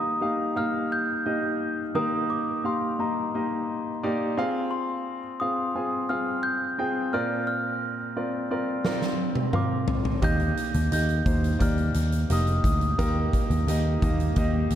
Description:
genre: piano-driven pop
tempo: 87 BPM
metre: 4/4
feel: straight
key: Eb major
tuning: A4 = 440 Hz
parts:
  - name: glockenspiel with rubber mallets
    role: melody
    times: 0.0-14.8 s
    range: Bb5 to G6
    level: -30 LUFS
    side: equal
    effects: slapback echo
  - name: clear baby grand piano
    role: accompaniment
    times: 0.0-14.8 s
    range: Bb2 to Ab5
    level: -28 LUFS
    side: equal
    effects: slapback echo
  - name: huge arena drum kit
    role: drums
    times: 8.8-14.8 s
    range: hi-hat, kick drum, snare drum, toms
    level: -27 LUFS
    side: equal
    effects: none
  - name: vintage muted picked electric bass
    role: bass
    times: 10.2-14.8 s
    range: F1 to Eb2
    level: -24 LUFS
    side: equal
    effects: none
room: moderate lush hall reverb, RT60 2.7 s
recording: big arena sound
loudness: -24 LUFS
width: side -10 dB against mid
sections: 0.0-14.8 A section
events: drum fill 8.8-10.2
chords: 0.0 Eb; 4.4 Fm; 7.1 Bbadd9; 10.2 Eb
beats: 0.56 1.25 | 1.95 2.64 3.33 4.02 | 4.71 5.40 6.09 6.78 | 7.47 8.16 8.85 9.54 | 10.23 10.92 11.61 12.30 | 12.99 13.68 14.37

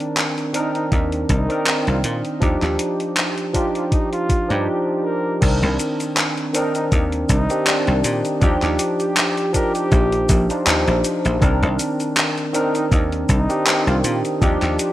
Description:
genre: vaporwave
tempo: 80 BPM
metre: 4/4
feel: swing 55% on 16ths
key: unclear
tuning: A4 = 440 Hz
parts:
  - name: barky tine electric piano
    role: accompaniment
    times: 0.0-14.9 s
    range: Eb3 to D5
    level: -21 LUFS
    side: equal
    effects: overdrive, analog chorus, vintage 12-bit sampler grit, analog delay
  - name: gated 80s digital drum machine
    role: drums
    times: 0.0-14.9 s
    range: cabasa, crash cymbal, handclaps, hi-hat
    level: -22 LUFS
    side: equal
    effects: gated reverb, overdrive
  - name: mellow flugelhorn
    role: melody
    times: 0.5-14.2 s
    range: Eb4 to Bb4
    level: -27 LUFS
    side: equal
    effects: tape echo
  - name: dry thumbed slap bass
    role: bass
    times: 0.9-14.8 s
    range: Bb1 to Bb2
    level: -20 LUFS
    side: equal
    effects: none
  - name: electronic kick drum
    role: drums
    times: 0.9-14.6 s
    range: none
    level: -19 LUFS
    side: equal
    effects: overdrive
room: light reverb, digital ambience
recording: rough home demo mix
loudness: -17 LUFS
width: side -14 dB against mid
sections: 0.0-5.4 A section; 5.4-14.9 B section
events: break 4.7-5.4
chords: 0.0 Cm9; 2.4 Ebmaj9; 5.4 Cm9; 8.4 Ebmaj9; 11.4 Cm9; 14.4 Ebmaj9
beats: 0.17 0.92 1.67 | 2.42 3.17 3.92 4.67 | 5.42 6.17 6.92 7.67 | 8.42 9.17 9.92 10.67 | 11.42 12.17 12.92 13.67 | 14.42

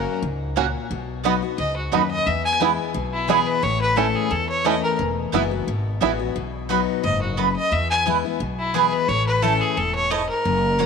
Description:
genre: bluegrass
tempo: 176 BPM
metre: 4/4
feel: swing 54% on 8ths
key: E major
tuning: A4 = 440 Hz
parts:
  - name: clear fiddle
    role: melody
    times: 0.0-5.0, 7.0-10.9 s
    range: E4 to G#5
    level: -23 LUFS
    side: left 1 dB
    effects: none
  - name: picked steel-string acoustic guitar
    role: accompaniment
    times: 0.0-10.9 s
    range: E2 to F#4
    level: -26 LUFS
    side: left 13 dB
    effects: none
  - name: upright bass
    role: bass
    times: 0.0-10.9 s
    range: E1 to E2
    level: -27 LUFS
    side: equal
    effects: none
  - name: bluegrass banjo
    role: arpeggios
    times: 0.6-6.1 s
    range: A3 to F#4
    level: -26 LUFS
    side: right 12 dB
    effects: none
  - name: mandolin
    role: stabs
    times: 0.6-10.9 s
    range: A3 to B5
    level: -26 LUFS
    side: right 12 dB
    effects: none
room: light reverb, studio reverb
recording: 1960s-style stereo with parts hard left and right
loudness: -19 LUFS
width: side -5 dB against mid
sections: 0.0-6.4 A section; 6.4-10.9 A section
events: none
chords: 0.0 F#; 0.9 B; 2.3 E; 3.6 A; 5.0 Eadd9; 6.4 B; 7.7 E; 9.1 A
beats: 0.22 0.56 | 0.90 1.25 1.59 1.93 | 2.27 2.61 2.95 3.29 | 3.63 3.97 4.31 4.65 | 4.99 5.33 5.67 6.02 | 6.36 6.70 7.04 7.38 | 7.72 8.06 8.40 8.74 | 9.09 9.43 9.77 10.11 | 10.45 10.79

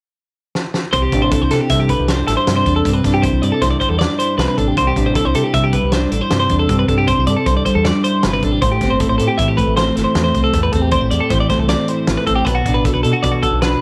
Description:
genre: math rock and midwest emo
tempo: 156 BPM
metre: 5/4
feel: straight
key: C lydian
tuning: A4 = 439 Hz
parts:
  - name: loose indie drum kit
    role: drums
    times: 0.6-13.7 s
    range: hi-hat, kick drum, snare drum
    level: -24 LUFS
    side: equal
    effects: none
  - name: twelve-string electric guitar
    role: accompaniment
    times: 0.9-13.8 s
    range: G2 to A4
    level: -21 LUFS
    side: equal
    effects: none
  - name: twelve-string electric guitar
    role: arpeggios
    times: 0.9-13.8 s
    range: F#4 to E5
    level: -21 LUFS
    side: equal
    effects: none
  - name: growling fingered electric bass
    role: bass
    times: 0.9-13.7 s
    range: G1 to C3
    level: -21 LUFS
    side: equal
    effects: overdrive
room: light reverb, small room ambience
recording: none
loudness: -16 LUFS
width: mono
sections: 0.9-13.8 A section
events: drum fill 0.5-0.9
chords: 0.0 N.C.; 0.9 C69; 12.5 Bm7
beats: 0.16 0.55 | 0.93 1.32 1.70 2.09 2.47 | 2.85 3.24 3.62 4.01 4.39 | 4.78 5.16 5.54 5.93 6.31 | 6.70 7.08 7.47 7.85 8.23 | 8.62 9.00 9.39 9.77 10.16 | 10.54 10.93 11.31 11.70 12.08 | 12.47 12.85 13.24 13.62

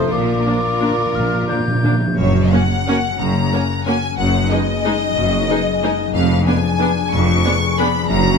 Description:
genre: classical, orchestral ballroom waltz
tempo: 165-198 BPM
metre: 3/4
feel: rubato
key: F# major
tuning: A4 = 442 Hz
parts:
  - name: rich symphonic violin section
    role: melody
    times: 0.0-8.4 s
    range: Bb4 to C#6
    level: -22 LUFS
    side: left 3 dB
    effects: none
  - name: mellow clarinet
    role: second line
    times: 0.0-2.0 s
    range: F4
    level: -29 LUFS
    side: left 4 dB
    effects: none
  - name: silver concert flute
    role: second line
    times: 0.0-2.2 s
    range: D6 to G6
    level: -25 LUFS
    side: equal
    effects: none
  - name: warm oboe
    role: second line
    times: 0.0-2.0 s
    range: C5 to D5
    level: -27 LUFS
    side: left 3 dB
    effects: none
  - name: warm studio violin section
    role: second line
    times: 0.0-7.9 s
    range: F4 to B4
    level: -29 LUFS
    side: left 2 dB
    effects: none
  - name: mellow bassoon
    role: accompaniment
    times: 0.0-2.0 s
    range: A3 to Bb3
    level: -24 LUFS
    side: left 1 dB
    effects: none
  - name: concert harp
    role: arpeggios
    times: 0.0-8.4 s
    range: F2 to G#5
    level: -22 LUFS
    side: left 10 dB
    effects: none
  - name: clear symphonic cello section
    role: bass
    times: 0.0-8.4 s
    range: F2 to Bb2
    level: -22 LUFS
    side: right 3 dB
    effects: none
  - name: clear symphonic double bass section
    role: bass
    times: 0.0-8.4 s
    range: F1 to Bb1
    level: -23 LUFS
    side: right 3 dB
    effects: none
  - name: timpani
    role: percussion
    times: 0.1-2.1 s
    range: Bb2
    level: -22 LUFS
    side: right 2 dB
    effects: none
  - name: rich symphonic viola section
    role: accompaniment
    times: 0.5-7.9 s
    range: G#3 to D#4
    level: -24 LUFS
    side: right 1 dB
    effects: none
  - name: dark French horn section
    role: sustained chords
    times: 0.5-2.0 s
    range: D4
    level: -30 LUFS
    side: left 6 dB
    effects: none
  - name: warm trombone section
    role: sustained chords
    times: 0.5-2.0 s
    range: F3 to Bb3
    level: -30 LUFS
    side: right 9 dB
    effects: none
room: moderate scoring stage reverb, RT60 1.7 s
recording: none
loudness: -15 LUFS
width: side -5 dB against mid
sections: 0.0-2.2 A section; 2.2-8.4 B section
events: timpani fill 0.1-2.2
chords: 0.1 Bb; 2.2 F#; 4.2 G#m7/F#; 6.1 Fdim7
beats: | 0.11 0.46 0.81 | 1.15 1.49 1.84 | 2.17 2.52 2.87 | 3.19 3.52 3.87 | 4.19 4.51 4.85 | 5.17 5.49 5.83 | 6.14 6.47 6.80 | 7.13 7.45 7.79 | 8.10

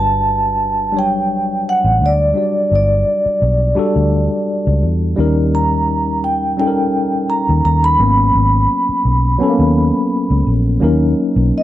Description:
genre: lush 1970s-style soul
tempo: 85 BPM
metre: 4/4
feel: swing 54% on 16ths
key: unclear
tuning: A4 = 440 Hz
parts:
  - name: vibraphone with soft mallets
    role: melody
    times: 0.0-11.6 s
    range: D5 to B5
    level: -16 LUFS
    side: right 1 dB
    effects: none
  - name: tine electric piano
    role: accompaniment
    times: 0.0-11.6 s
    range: F#3 to D5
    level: -18 LUFS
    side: left 2 dB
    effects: overdrive, fast stereo tremolo
  - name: vintage muted fingered electric bass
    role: bass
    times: 0.0-11.5 s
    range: G1 to E2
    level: -16 LUFS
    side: equal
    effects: none
room: light reverb, studio ambience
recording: dark, warm production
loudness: -13 LUFS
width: side -13 dB against mid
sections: 0.0-10.8 A section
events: none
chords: 0.0 Gmaj7; 5.2 D#7; 8.0 G#m11; 10.8 D#m7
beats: 0.26 0.96 1.67 | 2.37 3.07 3.78 4.48 | 5.18 5.89 6.59 7.30 | 8.00 8.71 9.41 10.11 | 10.82 11.52

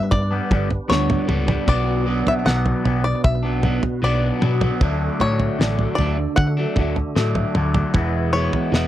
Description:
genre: psychedelic rock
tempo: 77 BPM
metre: 4/4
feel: straight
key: unclear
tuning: A4 = 440 Hz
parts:
  - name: bluegrass banjo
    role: melody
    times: 0.0-8.9 s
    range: C#5 to F#5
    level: -25 LUFS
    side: left 2 dB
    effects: slapback echo
  - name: percussive tonewheel organ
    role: sustained chords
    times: 0.0-8.9 s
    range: A3 to B4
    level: -32 LUFS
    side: right 3 dB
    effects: slow rotary speaker, overdrive, chorus vibrato
  - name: electric guitar at the edge of break-up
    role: riff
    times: 0.0-8.9 s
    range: G2 to E4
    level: -22 LUFS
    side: equal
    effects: phaser
  - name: hollow-body short-scale picked electric bass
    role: bass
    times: 0.1-8.9 s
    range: E1 to D3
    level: -22 LUFS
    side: equal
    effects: none
  - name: damped 70s drum kit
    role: drums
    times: 0.1-8.9 s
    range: kick drum, snare drum, toms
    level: -21 LUFS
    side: right 1 dB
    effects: none
room: little or no reverb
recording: dry, close 1970s-style studio recording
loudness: -17 LUFS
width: side -13 dB against mid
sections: 0.0-8.9 A section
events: none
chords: 0.0 G; 1.7 Bm; 4.8 D; 7.9 E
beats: 0.12 0.90 | 1.68 2.46 3.25 4.03 | 4.81 5.60 6.38 7.17 | 7.95 8.73

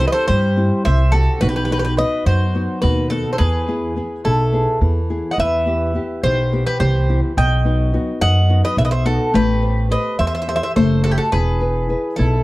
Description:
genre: greek folk, Greek bouzouki band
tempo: 212 BPM (eighths)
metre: 7/8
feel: straight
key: unclear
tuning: A4 = 441 Hz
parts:
  - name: Greek bouzouki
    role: melody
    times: 0.0-12.4 s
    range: G4 to G5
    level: -21 LUFS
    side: equal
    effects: tape echo
  - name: mandolin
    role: second line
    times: 0.0-12.4 s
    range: E4 to D#5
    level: -27 LUFS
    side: right 3 dB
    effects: none
  - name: nylon-string guitar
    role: accompaniment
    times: 0.0-12.4 s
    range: B2 to C5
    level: -22 LUFS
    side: left 2 dB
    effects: none
  - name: upright bass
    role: bass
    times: 0.0-12.4 s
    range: E1 to G2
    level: -18 LUFS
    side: equal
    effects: none
room: light reverb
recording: dark, warm production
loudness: -15 LUFS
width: side -19 dB against mid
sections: 0.0-12.4 A section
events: none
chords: 0.0 C; 1.4 B; 3.4 E; 5.4 Em; 7.4 B; 9.3 Am7; 11.3 E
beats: 0.01 0.29 0.57 0.86 1.14 | 1.42 1.71 1.99 2.27 2.56 2.84 3.12 | 3.40 3.69 3.97 4.25 4.54 4.82 5.10 | 5.38 5.67 5.95 6.23 6.52 6.80 7.08 | 7.37 7.65 7.93 8.21 8.50 8.78 9.06 | 9.35 9.63 9.91 10.20 10.48 10.76 11.05 | 11.33 11.61 11.90 12.18

